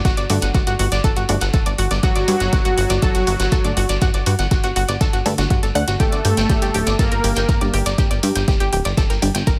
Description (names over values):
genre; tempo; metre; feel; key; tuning
melodic techno; 121 BPM; 4/4; straight; unclear; A4 = 440 Hz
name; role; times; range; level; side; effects
analog pluck; arpeggios; 0.0-9.5 s; F#4 to G5; -26 LUFS; equal; chorus, sidechain pumping, delay
plucky analog bass; bass; 0.0-9.6 s; D1 to G2; -24 LUFS; equal; sidechain pumping
electronic kick drum; drums; 0.0-9.6 s; none; -20 LUFS; equal; none
electronic hi-hat; drums; 0.1-9.6 s; none; -29 LUFS; equal; sidechain pumping on hats
shekere; percussion; 0.1-9.6 s; none; -32 LUFS; equal; none
filtered dub chord stab; stabs; 0.3-9.3 s; D3 to G4; -29 LUFS; equal; phaser, sidechain pumping, delay
soft supersaw; melody; 2.0-7.6 s; F#3 to Bb4; -26 LUFS; equal; sidechain pumping, delay
room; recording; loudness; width
digital ambience; none; -18 LUFS; mono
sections
0.0-9.6 A section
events
none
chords
0.0 D/G; 6.0 Gmadd9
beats
| 0.05 0.55 1.04 1.54 | 2.03 2.53 3.02 3.52 | 4.02 4.51 5.01 5.50 | 6.00 6.50 6.99 7.49 | 7.98 8.48 8.97 9.47